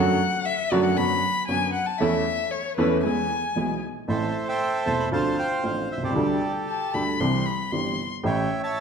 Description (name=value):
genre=tango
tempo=116 BPM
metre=4/4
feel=rubato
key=A minor from 4.1 s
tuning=A4 = 440 Hz
part: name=warm violin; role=second line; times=0.0-8.1 s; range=B4 to C6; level=-26 LUFS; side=left 6 dB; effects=none
part: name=warm baby grand piano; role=accompaniment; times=0.0-8.5 s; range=E1 to A4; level=-25 LUFS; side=right 2 dB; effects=none
part: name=muted studio string section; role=stabs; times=0.0-3.8 s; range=F#2 to F#4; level=-31 LUFS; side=right 4 dB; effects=none
part: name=bandoneon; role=melody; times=4.1-8.8 s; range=G4 to B5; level=-26 LUFS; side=right 2 dB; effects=none
room=wet recital hall reverb, RT60 1.6 s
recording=dark, warm production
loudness=-22 LUFS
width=side -6 dB against mid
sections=0.0-4.1 A section; 4.1-8.8 B section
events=violin solo 0.0-4.1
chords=0.0 D/F#; 1.0 Bm/F#; 2.0 A/E; 3.0 E; 4.1 Am; 5.1 Dm7; 6.2 Gsus2/D; 7.2 C; 8.2 A7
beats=0.46 0.97 1.49 | 2.01 2.52 3.04 3.56 | 4.08 4.61 5.12 5.64 | 6.16 6.68 7.20 7.72 | 8.24 8.76